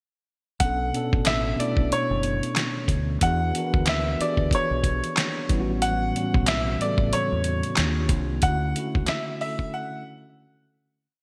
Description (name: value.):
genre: R&B, neo-soul.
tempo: 92 BPM.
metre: 4/4.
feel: swing 58% on 16ths.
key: B minor.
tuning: A4 = 439 Hz.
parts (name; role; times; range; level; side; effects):
bright concert grand piano; melody; 0.6-10.7 s; C#5 to F#5; -30 LUFS; equal; delay.
mellow tine electric piano; accompaniment; 0.6-11.1 s; A2 to B4; -31 LUFS; equal; none.
deep dub fingered electric bass; bass; 0.6-9.1 s; F#1 to E2; -30 LUFS; equal; none.
dusty soul sampler-style drum kit; drums; 0.6-9.7 s; handclaps, hi-hat, kick drum, snare drum; -28 LUFS; equal; gated reverb.
room: moderate lush hall reverb, RT60 2.4 s.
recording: bright 1980s-style digital production.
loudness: -24 LUFS.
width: mono.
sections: 0.6-11.0 groove.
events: fade-out 8.4-11.0; break 9.7-11.0.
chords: 0.6 Bm9; 3.2 E7; 5.5 A13; 7.8 D#maj9; 8.4 Dmaj9.